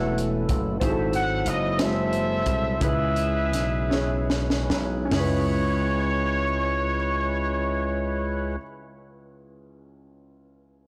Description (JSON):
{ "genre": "slow gospel", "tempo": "47-62 BPM (dotted quarters)", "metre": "6/8", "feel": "straight", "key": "C# minor", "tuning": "A4 = 438 Hz", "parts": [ { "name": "warm horn section", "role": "melody", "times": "0.0-8.6 s", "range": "G#4 to F#5", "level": "-30 LUFS", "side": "equal", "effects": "none" }, { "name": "warm upright piano", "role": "accompaniment", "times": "0.0-10.9 s", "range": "C#2 to G#5", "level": "-32 LUFS", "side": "equal", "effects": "none" }, { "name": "percussive tonewheel organ", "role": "sustained chords", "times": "0.0-8.6 s", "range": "F#3 to B4", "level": "-35 LUFS", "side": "equal", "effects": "slow rotary speaker" }, { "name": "slap bass with an envelope filter", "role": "bass", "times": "0.0-8.6 s", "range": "E1 to C#2", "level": "-30 LUFS", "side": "equal", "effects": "tube saturation" }, { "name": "crisp fusion drum kit", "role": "drums", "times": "0.2-5.3 s", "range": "hi-hat, kick drum, snare drum, toms", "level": "-31 LUFS", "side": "equal", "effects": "none" } ], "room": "light reverb, small room ambience", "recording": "blown-out, overdriven recording, overdrive", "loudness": "-25 LUFS", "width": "mono", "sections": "0.0-5.1 A section; 5.1-10.2 B section", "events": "slowing down 0.8-5.1; drum fill 3.9-5.1", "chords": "0.0 F#m9; 0.8 G#7b9b13; 2.8 C#m7" }